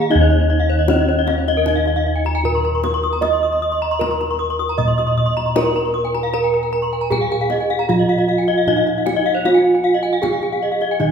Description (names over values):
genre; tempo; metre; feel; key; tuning
Balinese gamelan; 77 BPM; 4/4; straight; Eb slendro; A4 = 440 Hz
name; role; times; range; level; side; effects
gamelan-type bronze metallophone; melody; 0.0-11.1 s; Db4-45c to Eb5; -20 LUFS; right 3 dB; none
gamelan-type bronze metallophone; arpeggios; 0.0-11.0 s; Bb4+25c to Eb6; -26 LUFS; right 5 dB; none
gamelan-type bossed gongs; bass; 0.0-11.1 s; Eb2 to Eb5; -20 LUFS; equal; none
gamelan-type bronze metallophone; arpeggios; 0.1-11.1 s; Db5-45c to Eb6; -21 LUFS; left 6 dB; none
kendang; percussion; 0.3-11.1 s; none; -26 LUFS; left 3 dB; none
room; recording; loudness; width
wet recital hall reverb, RT60 1.9 s; minimal, uncompressed stereo recording; -15 LUFS; side -7 dB against mid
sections
0.1-11.1 A section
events
none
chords
none